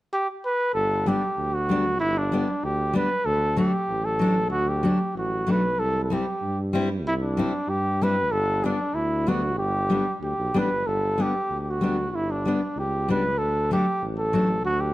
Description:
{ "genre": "alpine folk", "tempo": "95 BPM", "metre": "2/4", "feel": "straight", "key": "G major", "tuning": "A4 = 438 Hz", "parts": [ { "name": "mellow trumpet", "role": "melody", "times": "0.1-14.9 s", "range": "D4 to B4", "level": "-25 LUFS", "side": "right 1 dB", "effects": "none" }, { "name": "warm tuba", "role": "bass", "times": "0.7-14.9 s", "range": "G1 to G2", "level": "-29 LUFS", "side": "equal", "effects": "none" }, { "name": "fingerpicked steel-string acoustic guitar", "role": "accompaniment", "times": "1.1-14.5 s", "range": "F#3 to E4", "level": "-26 LUFS", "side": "left 2 dB", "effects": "none" } ], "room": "light reverb", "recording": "close, detailed microphones", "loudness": "-22 LUFS", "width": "side -16 dB against mid", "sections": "0.7-10.9 A section; 10.9-14.9 A section", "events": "none", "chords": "0.0 N.C.; 0.7 G; 3.3 D; 5.8 C; 8.3 G; 13.4 D", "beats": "0.12 | 0.75 1.38 | 2.01 2.63 | 3.25 3.88 | 4.51 5.14 | 5.78 6.41 | 7.05 7.68 | 8.31 8.94 | 9.57 10.21 | 10.85 11.49 | 12.13 12.76 | 13.38 14.01 | 14.64" }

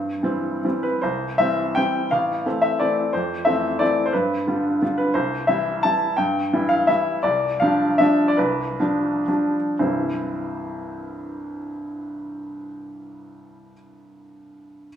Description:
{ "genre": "classical, piano waltz", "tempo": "107-189 BPM", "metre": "3/4", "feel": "rubato", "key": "C major", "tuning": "A4 = 440 Hz", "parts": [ { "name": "clear upright piano", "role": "solo", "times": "0.0-14.9 s", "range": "A1 to A5", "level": "-20 LUFS", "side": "equal", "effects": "none" } ], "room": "wet recital hall reverb, RT60 1.8 s", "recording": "recorded in a church or concert hall", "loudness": "-19 LUFS", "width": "side -9 dB against mid", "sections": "0.0-1.0 A section; 1.0-9.8 B section; 9.8-12.7 C section", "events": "slowing down 6.7-9.8", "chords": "0.0 C; 2.1 Am; 3.1 Fmaj7; 4.1 G7; 5.1 C; 7.2 G7/C; 9.8 C", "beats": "0.24 0.64 | 1.04 1.40 1.77 | 2.12 2.46 2.81 | 3.15 3.47 3.81 | 4.15 4.48 4.82 | 5.15 5.49 5.84 | 6.18 6.53 6.88 | 7.24 7.61 8.00 | 8.39 8.80 9.28 | 9.81 10.28 10.76 | 11.23 11.71 12.23" }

